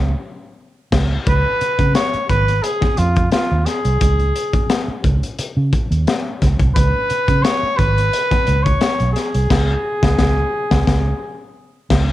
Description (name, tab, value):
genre	funk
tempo	87 BPM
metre	4/4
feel	straight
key	unclear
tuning	A4 = 440 Hz
part	vintage muted fingered electric bass	bass	0.0-12.1 s	G#1 to C#3	-17 LUFS	right 1 dB	none
part	crunchy breakbeat drum kit	drums	0.9-12.1 s	crash cymbal, hi-hat, kick drum, snare drum	-19 LUFS	left 1 dB	none
part	mellow trumpet	melody	1.3-11.5 s	E#4 to C#5	-20 LUFS	equal	none
room	light reverb, studio ambience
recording	1960s-style stereo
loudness	-15 LUFS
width	side -14 dB against mid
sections	0.0-1.3 A section; 1.3-12.1 B section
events	band accent 0.0-1.3, 9.5-12.1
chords	0.0 N.C.; 1.3 C#7(no3)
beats	0.58 | 1.26 1.95 2.64 3.32 | 4.01 4.70 5.38 6.07 | 6.76 7.44 8.13 8.81 | 9.50 10.19 10.87 11.56